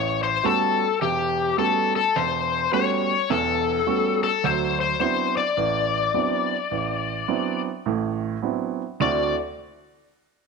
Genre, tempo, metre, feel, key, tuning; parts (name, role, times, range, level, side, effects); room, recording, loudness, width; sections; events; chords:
blues; 105 BPM; 4/4; swing 63% on 8ths; D mixolydian; A4 = 441 Hz
overdriven slide guitar; melody; 0.0-9.3 s; G4 to D5; -22 LUFS; left 8 dB
warm grand piano; accompaniment; 0.0-9.3 s; E1 to F#4; -25 LUFS; right 10 dB
moderate echo chamber reverb, RT60 1.4 s, small room ambience; 1960s-style stereo with parts hard left and right; -21 LUFS; side -4 dB against mid
0.0-9.0 A section; 9.0-10.5 B section
0.0 A13; 4.4 D13; 9.0 D9